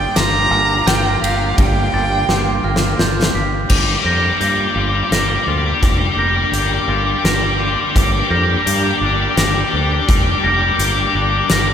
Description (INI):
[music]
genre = post-rock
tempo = 85 BPM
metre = 3/4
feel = straight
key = unclear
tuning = A4 = 440 Hz
[part]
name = warm violin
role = melody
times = 0.0-3.0 s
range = F5 to Bb5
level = -20 LUFS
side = right 2 dB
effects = none
[part]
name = warm studio string section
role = sustained chords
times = 0.0-11.7 s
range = D3 to G4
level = -26 LUFS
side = equal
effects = none
[part]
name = twangy electric guitar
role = arpeggios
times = 0.0-11.7 s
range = G2 to D5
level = -22 LUFS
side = equal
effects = none
[part]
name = fingered electric bass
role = bass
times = 0.0-11.7 s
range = F1 to G2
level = -20 LUFS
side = equal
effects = none
[part]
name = glockenspiel with soft plastic mallets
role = arpeggios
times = 0.2-11.5 s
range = D6 to Bb6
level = -26 LUFS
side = right 4 dB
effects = none
[part]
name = huge arena drum kit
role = drums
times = 0.2-11.7 s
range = crash cymbal, hi-hat, kick drum, ride cymbal, snare drum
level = -19 LUFS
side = equal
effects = none
[part]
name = distorted electric guitar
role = riff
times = 3.7-11.7 s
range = G4 to D5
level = -19 LUFS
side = left 4 dB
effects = distortion
[sound]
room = wet cathedral reverb, RT60 5.7 s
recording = recorded in a church or concert hall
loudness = -13 LUFS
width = side -8 dB against mid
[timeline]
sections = 0.0-3.7 A section; 3.7-11.7 B section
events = drum fill 2.3-3.7; build-up 3.7-11.7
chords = 0.0 Gm7; 3.7 Bb6/F